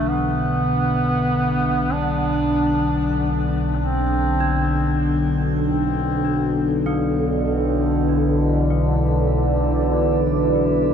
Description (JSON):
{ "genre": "dark ambient drone", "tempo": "free time", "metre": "none", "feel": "none", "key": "B minor", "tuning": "A4 = 440 Hz", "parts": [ { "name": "warm duduk", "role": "melody", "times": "0.0-5.0 s", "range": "A3 to D4", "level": "-24 LUFS", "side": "right 1 dB", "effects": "shimmer reverb, ping-pong delay" }, { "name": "gamelan-type bronze metallophone", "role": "arpeggios", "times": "0.0-10.9 s", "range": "E3 to D4", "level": "-32 LUFS", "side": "left 1 dB", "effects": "shimmer reverb, ping-pong delay" }, { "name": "analog drone", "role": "drone", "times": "0.0-10.9 s", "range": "B1 to D3", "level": "-19 LUFS", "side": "left 1 dB", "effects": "chorus, phaser" }, { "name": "deep dark ambient pad", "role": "sustained chords", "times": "7.4-10.9 s", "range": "E4 to D5", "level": "-24 LUFS", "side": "right 3 dB", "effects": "chorus, built-in reverb, shimmer reverb" } ], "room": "wet huge ambient reverb, RT60 7.8 s", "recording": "none", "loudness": "-18 LUFS", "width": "side -8 dB against mid", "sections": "0.0-10.9 A section", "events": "fade-out on bronze metallophone 0.0-10.9", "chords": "0.0 Bm", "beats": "free time" }